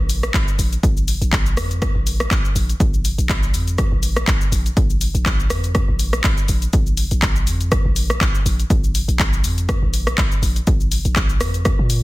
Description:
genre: afro house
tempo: 122 BPM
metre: 4/4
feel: swing 55% on 16ths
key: unclear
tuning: A4 = 440 Hz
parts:
  - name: warm 808-style bass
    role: bass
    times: 0.0-12.0 s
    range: Bb1 to Bb2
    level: -21 LUFS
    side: equal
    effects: sidechain pumping
  - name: house drum kit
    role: drums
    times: 0.1-12.0 s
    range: handclaps, hi-hat, rim click, shaker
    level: -23 LUFS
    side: left 1 dB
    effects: none
  - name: electronic kick drum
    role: drums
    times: 0.3-11.8 s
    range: none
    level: -19 LUFS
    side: equal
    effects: none
room: digital ambience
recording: dense, heavily limited modern master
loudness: -16 LUFS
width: side -19 dB against mid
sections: 0.0-12.0 A section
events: none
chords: none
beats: 0.34 | 0.83 1.33 1.82 2.31 | 2.80 3.29 3.79 4.28 | 4.77 5.26 5.75 6.25 | 6.74 7.23 7.72 8.21 | 8.70 9.20 9.69 10.18 | 10.67 11.16 11.65

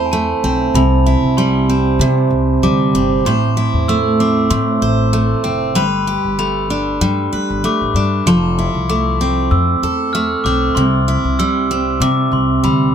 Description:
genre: acoustic pop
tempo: 96 BPM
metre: 4/4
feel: swing 55% on 16ths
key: C major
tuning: A4 = 441 Hz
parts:
  - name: glockenspiel with rubber mallets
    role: second line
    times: 0.0-12.9 s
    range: Ab5 to F6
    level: -20 LUFS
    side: left 3 dB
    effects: none
  - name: picked steel-string acoustic guitar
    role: accompaniment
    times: 0.0-12.9 s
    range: A2 to C5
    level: -15 LUFS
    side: right 2 dB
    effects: none
  - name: upright bass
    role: bass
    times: 0.0-12.9 s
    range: F1 to C3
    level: -19 LUFS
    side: left 2 dB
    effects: none
room: light reverb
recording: close, detailed microphones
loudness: -13 LUFS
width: side -8 dB against mid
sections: 0.0-12.9 A section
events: none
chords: 0.0 Fmaj7 (rootless); 0.8 Cmaj7; 3.3 Am; 5.8 Gadd9; 8.3 Fmaj7; 10.8 C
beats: 0.12 | 0.75 1.38 2.00 2.63 | 3.25 3.88 4.51 5.13 | 5.76 6.38 7.01 7.63 | 8.26 8.89 9.51 10.14 | 10.76 11.38 12.01 12.63

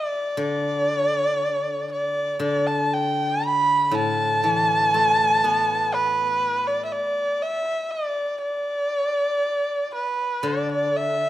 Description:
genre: chinese traditional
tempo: 60 BPM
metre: 2/4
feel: straight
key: D zhi mode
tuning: A4 = 435 Hz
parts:
  - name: rich erhu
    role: melody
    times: 0.0-11.3 s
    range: B4 to B5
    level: -21 LUFS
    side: right 1 dB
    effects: none
  - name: steel-string zither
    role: accompaniment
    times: 0.4-7.4, 10.4-11.3 s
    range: A2 to B3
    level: -27 LUFS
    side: left 2 dB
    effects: none
room: moderate recital hall reverb, RT60 1.6 s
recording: none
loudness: -20 LUFS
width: side -13 dB against mid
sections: 0.0-10.4 A section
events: none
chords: none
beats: | 0.39 1.39 | 2.41 3.42 | 4.43 5.43 | 6.42 7.41 | 8.41 9.42 | 10.44

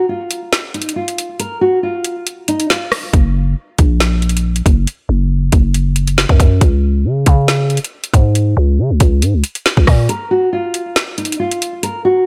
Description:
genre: hip hop, drill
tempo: 138 BPM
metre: 4/4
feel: half-time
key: unclear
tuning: A4 = 440 Hz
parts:
  - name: nylon-string guitar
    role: melody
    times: 0.0-2.9, 10.1-12.2 s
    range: Eb4 to Bb4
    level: -19 LUFS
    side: equal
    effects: delay
  - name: drill drum kit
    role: drums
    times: 0.3-11.9 s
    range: hi-hat, kick drum, rim click, snare drum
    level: -16 LUFS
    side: equal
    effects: none
  - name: growling 808-style bass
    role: bass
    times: 3.1-10.1 s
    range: Gb1 to Db3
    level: -15 LUFS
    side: equal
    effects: none
room: little or no reverb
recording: none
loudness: -15 LUFS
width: mono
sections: 0.0-12.3 A section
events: break 0.0-3.1; kick muted 10.1-12.3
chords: 0.0 N.C.; 3.1 Gb; 6.6 Db5; 10.1 N.C.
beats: 0.09 0.53 0.96 | 1.40 1.83 2.27 2.70 | 3.13 3.57 4.00 4.44 | 4.87 5.31 5.74 6.18 | 6.61 7.05 7.48 7.92 | 8.35 8.79 9.22 9.66 | 10.09 10.53 10.96 11.40 | 11.83

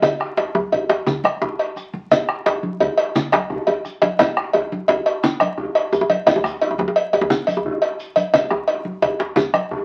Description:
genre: west african traditional, West African drum ensemble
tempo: 116 BPM (dotted quarters)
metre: 12/8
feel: straight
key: none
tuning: none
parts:
  - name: bombo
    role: percussion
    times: 0.0-9.8 s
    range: none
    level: -28 LUFS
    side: equal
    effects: none
  - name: congas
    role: percussion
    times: 0.0-9.8 s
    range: none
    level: -26 LUFS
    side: equal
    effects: none
  - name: cowbell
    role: percussion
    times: 0.0-9.7 s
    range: none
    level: -20 LUFS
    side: equal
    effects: none
  - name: djembe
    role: percussion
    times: 0.0-9.8 s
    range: none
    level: -32 LUFS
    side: equal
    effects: none
  - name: djembe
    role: percussion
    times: 0.0-9.5 s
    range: none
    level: -24 LUFS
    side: equal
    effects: none
  - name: shekere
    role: percussion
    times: 0.0-9.5 s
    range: none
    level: -39 LUFS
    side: equal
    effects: none
room: wet small room reverb, RT60 0.6 s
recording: very old 78 rpm record, vinyl crackle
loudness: -20 LUFS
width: mono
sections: 0.0-9.8 A section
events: none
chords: none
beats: | 0.03 0.55 1.07 1.60 | 2.12 2.64 3.16 3.68 | 4.20 4.72 5.24 5.75 | 6.27 6.79 7.31 7.82 | 8.34 8.85 9.37

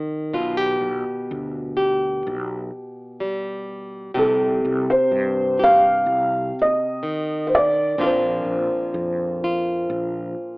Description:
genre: acoustic folk-pop ballad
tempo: 63 BPM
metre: 4/4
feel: straight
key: C dorian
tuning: A4 = 437 Hz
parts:
  - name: nylon-string guitar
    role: accompaniment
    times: 0.0-10.6 s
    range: Bb2 to G4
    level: -24 LUFS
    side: equal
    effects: none
  - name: mellow fretless electric bass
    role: bass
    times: 0.3-10.3 s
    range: Bb1 to G2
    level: -30 LUFS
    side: equal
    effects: tube saturation
  - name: felt-muted upright piano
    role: melody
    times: 4.2-10.6 s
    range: A4 to F5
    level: -19 LUFS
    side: equal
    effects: none
room: light reverb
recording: worn, warbling old tape, cassette tape, warbly pitch drift, AM radio sound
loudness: -19 LUFS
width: side -24 dB against mid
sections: 0.0-10.6 A section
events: none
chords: 0.3 G/B; 4.2 Cm; 8.0 Bbadd9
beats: | 0.35 1.30 2.26 3.22 | 4.17 5.13 6.08 7.04 | 7.99 8.95 9.91

